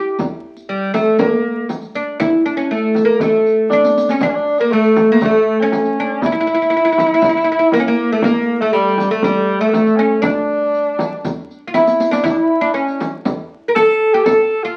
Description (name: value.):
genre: Arabic maqam ensemble.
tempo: 120 BPM.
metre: 4/4.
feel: straight.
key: A maqam hijaz.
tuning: A4 = 440 Hz.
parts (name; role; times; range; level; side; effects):
oud; melody; 0.0-14.8 s; G3 to Bb4+25c; -17 LUFS; equal; none.
frame drum; percussion; 0.2-14.4 s; none; -26 LUFS; equal; none.
riq; percussion; 0.2-14.7 s; none; -28 LUFS; equal; none.
warm tenor saxophone; second line; 3.7-14.8 s; G3 to A4; -19 LUFS; equal; none.
room: wet studio reverb, RT60 0.6 s.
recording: very old 78 rpm record, vinyl crackle.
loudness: -15 LUFS.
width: mono.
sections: 0.0-4.2 A section; 4.2-14.8 B section.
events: drum fill 3.7-4.2, 11.8-12.3.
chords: none.